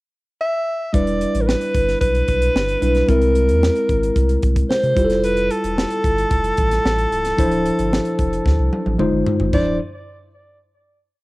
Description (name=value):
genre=polished 1980s jazz-funk pop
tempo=112 BPM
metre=4/4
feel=straight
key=D dorian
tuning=A4 = 440 Hz
part: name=warm alto saxophone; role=melody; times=0.4-9.8 s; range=A4 to E5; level=-20 LUFS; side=equal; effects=cassette tape
part: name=mellow tine electric piano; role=accompaniment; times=0.9-9.8 s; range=E3 to C5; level=-21 LUFS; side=left 1 dB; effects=lush chorus, cassette tape
part: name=warm sub bass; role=bass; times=0.9-9.8 s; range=C#1 to C3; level=-21 LUFS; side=equal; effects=none
part: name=crisp fusion drum kit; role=drums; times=0.9-9.7 s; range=crash cymbal, hi-hat, kick drum, snare drum, toms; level=-22 LUFS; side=equal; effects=cassette tape
room=light reverb, small room ambience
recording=home recording on cassette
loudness=-16 LUFS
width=side -20 dB against mid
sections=0.0-0.9 pickup bar; 0.9-9.5 verse; 9.5-11.2 final chord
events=drum fill 8.5-9.5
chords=0.0 N.C.; 0.9 Em7; 3.1 Caug7; 5.0 Fmaj9; 7.4 Dm9; 9.0 Fm7; 9.5 Dm9